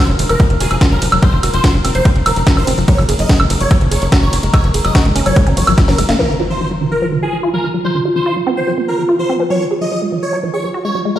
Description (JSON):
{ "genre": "psychedelic trance", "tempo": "145 BPM", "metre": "4/4", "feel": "straight", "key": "F phrygian", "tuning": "A4 = 440 Hz", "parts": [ { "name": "dense compressed supersaw", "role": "melody", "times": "0.0-11.2 s", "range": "Ab4 to Eb5", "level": "-21 LUFS", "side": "right 1 dB", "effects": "phaser, sidechain pumping, tape echo" }, { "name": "overtone-sweeping drone", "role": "sustained chords", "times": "0.0-11.2 s", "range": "F4 to Bb4", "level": "-22 LUFS", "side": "right 1 dB", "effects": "chorus, built-in reverb, sidechain pumping" }, { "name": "woody wave-folded pluck", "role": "riff", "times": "0.0-11.2 s", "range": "Eb3 to Ab4", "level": "-19 LUFS", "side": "left 1 dB", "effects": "chorus, auto-pan, sidechain pumping, ping-pong delay" }, { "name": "tight sequencer bass", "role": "bass", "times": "0.1-6.2 s", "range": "F1 to Ab1", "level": "-15 LUFS", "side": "equal", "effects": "none" }, { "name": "techno drum kit", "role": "drums", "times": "0.2-6.2 s", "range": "hi-hat, ride cymbal, snare drum, woodblock", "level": "-18 LUFS", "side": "right 1 dB", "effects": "overdrive" }, { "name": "electronic kick drum", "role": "drums", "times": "0.4-5.9 s", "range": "none", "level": "-11 LUFS", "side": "equal", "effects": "none" }, { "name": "impact", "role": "sound effects", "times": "6.2-7.8 s", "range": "none", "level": "-26 LUFS", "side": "equal", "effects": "none" } ], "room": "light reverb", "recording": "played on a big sound system in a bare room, stone room reverb", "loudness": "-12 LUFS", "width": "side -12 dB against mid", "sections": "0.0-6.2 A section; 6.2-11.2 B section", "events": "drop 0.0-6.2; drum fill 5.8-6.2; band accent 6.1; impact 6.2-7.8; filter sweep on synth arpeggio sound 6.2-11.2", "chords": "0.0 F5; 2.9 Gb5; 6.2 F5; 9.5 Gb5" }